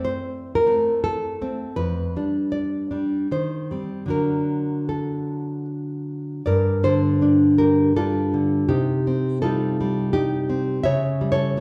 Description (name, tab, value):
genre	romantic piece for solo classical guitar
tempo	74-86 BPM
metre	3/4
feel	rubato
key	G minor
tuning	A4 = 439 Hz
part	nylon-string guitar	solo	0.0-11.6 s	F2 to E5	-22 LUFS	equal	none
room	wet recital hall reverb, RT60 1.4 s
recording	recorded in a church or concert hall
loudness	-22 LUFS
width	mono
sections	0.0-6.5 A section; 6.5-11.6 B section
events	none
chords	0.0 F#dim (rootless); 1.8 G7/F; 3.3 Cm/Eb; 4.1 D; 6.5 Gm; 8.7 Cm; 10.8 A7/C#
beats	0.32 1.06 | 1.81 2.55 3.31 | 4.12 4.91 5.69 | 6.48 7.23 7.97 | 8.71 9.43 10.14 | 10.85 11.55